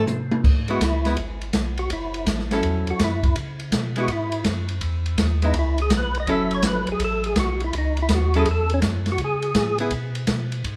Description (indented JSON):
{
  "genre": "soul jazz organ trio",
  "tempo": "165 BPM",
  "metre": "4/4",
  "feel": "swing 66% on 8ths",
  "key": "C# minor",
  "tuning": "A4 = 440 Hz",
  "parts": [
    { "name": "archtop guitar, miked and amplified", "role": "accompaniment", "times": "0.0-9.9 s", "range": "F#3 to A4", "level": "-28 LUFS", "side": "equal", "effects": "none" },
    { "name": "tonewheel organ", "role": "bass", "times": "0.0-10.8 s", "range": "F#1 to C#3", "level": "-28 LUFS", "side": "equal", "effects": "overdrive, slow rotary speaker" },
    { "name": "open jazz drum kit", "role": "drums", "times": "0.1-10.8 s", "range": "crash cymbal, hi-hat, kick drum, ride cymbal, snare drum, toms", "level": "-26 LUFS", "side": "equal", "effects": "none" },
    { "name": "percussive tonewheel organ", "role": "melody", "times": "0.7-9.8 s", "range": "C#4 to E5", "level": "-28 LUFS", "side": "equal", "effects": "slow rotary speaker, overdrive, chorus vibrato" }
  ],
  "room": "moderate large studio reverb, RT60 1.4 s",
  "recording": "none",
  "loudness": "-23 LUFS",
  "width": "mono",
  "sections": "0.4-10.8 A section",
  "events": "drum fill 0.0-0.4; tonewheel organ solo 0.4-10.8",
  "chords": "0.4 C#m7; 1.9 F#m7; 3.4 C#m7; 6.3 F#m7; 9.2 C#7(no3)"
}